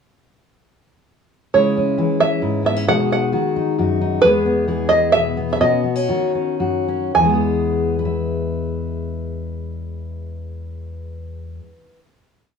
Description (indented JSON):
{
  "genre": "indie folk with a building arrangement",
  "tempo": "107-134 BPM",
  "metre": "3/4",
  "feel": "straight",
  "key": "E major",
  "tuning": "A4 = 440 Hz",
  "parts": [
    { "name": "open-back banjo", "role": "melody", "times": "1.5-11.5 s", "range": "B4 to G#5", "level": "-17 LUFS", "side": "right 3 dB", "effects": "none" },
    { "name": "fingerpicked steel-string acoustic guitar", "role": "accompaniment", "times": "1.5-12.0 s", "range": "E2 to E5", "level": "-19 LUFS", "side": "left 3 dB", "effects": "none" }
  ],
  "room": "wet studio reverb, RT60 0.6 s",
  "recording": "band playing live in one room, small room ambience",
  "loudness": "-16 LUFS",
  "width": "side -6 dB against mid",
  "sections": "1.5-7.1 verse; 7.1-10.5 final chord",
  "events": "slowing down 4.2-7.1",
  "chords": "1.5 C#m; 2.9 B6; 4.2 E; 5.6 Badd9; 7.1 E"
}